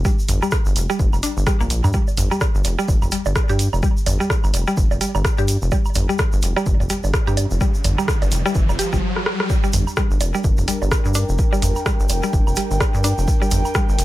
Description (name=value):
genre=minimal techno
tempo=127 BPM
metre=4/4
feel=swing 59% on 16ths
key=G minor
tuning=A4 = 441 Hz
part: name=mallet-like synth pluck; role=riff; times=0.0-13.8 s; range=G3 to G4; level=-25 LUFS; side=equal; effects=chorus, sidechain pumping, dub echo
part: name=rubbery square bass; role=bass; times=0.0-14.0 s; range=F1 to G2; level=-20 LUFS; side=equal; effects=sidechain pumping
part: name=electronic kick drum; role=drums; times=0.0-13.9 s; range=none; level=-20 LUFS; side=equal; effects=none
part: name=tube shaker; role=percussion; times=0.0-14.0 s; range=none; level=-32 LUFS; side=right 1 dB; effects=none
part: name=punchy analog drum machine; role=drums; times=0.3-14.0 s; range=hi-hat, rim click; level=-24 LUFS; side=equal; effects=none
part: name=electronic toms, woodblock and bongos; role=percussion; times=0.3-13.7 s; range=none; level=-26 LUFS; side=right 3 dB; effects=tape echo
part: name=riser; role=sound effects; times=7.0-9.5 s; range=none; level=-28 LUFS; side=left 1 dB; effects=none
part: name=airy breathy pad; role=texture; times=9.8-14.0 s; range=D4 to G5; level=-27 LUFS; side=equal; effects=chorus, sidechain pumping
room=little or no reverb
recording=none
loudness=-16 LUFS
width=side -16 dB against mid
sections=0.0-9.5 A section; 9.5-14.0 B section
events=riser 7.0-9.5; stop 9.0-9.5; drum fill 9.1-9.5; drop 9.5-14.0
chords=0.0 N.C.; 9.5 Gm